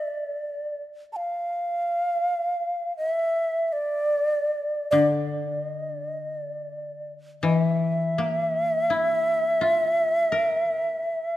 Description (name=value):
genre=japanese traditional, Japanese chamber music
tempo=free time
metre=none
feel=none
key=unclear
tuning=A4 = 441 Hz
part: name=mellow shakuhachi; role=melody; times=0.0-11.4 s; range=D5 to A5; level=-24 LUFS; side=equal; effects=none
part: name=koto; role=accompaniment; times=4.9-11.4 s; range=D3 to Bb4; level=-27 LUFS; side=left 4 dB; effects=none
room=moderate concert hall reverb, RT60 2.2 s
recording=none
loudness=-22 LUFS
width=side -14 dB against mid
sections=0.0-11.4 A section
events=none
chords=none